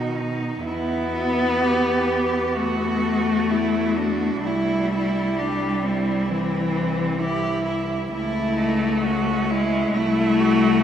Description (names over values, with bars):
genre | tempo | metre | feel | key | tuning
classical, lyrical piece for cello ensemble | 62-68 BPM | 4/4 | rubato | unclear | A4 = 440 Hz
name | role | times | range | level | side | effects
clear cello | melody | 0.0-10.8 s | C#4 to G4 | -29 LUFS | left 3 dB | none
dark cello | second line | 0.0-10.8 s | C4 to G4 | -26 LUFS | right 4 dB | none
warm cello | accompaniment | 0.0-10.8 s | D#3 to B3 | -22 LUFS | left 2 dB | none
rich cello | bass | 0.0-10.8 s | C2 to B2 | -28 LUFS | right 2 dB | none
room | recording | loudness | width
wet cathedral reverb, RT60 7.7 s | in a vast, echoing space | -20 LUFS | side -9 dB against mid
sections
0.0-10.8 A section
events
none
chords
0.0 B; 0.7 Em; 4.4 C; 8.1 A/C#; 10.0 Am/C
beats
| 0.67 1.62 2.57 3.50 | 4.44 5.39 6.31 7.20 | 8.12 9.05 9.95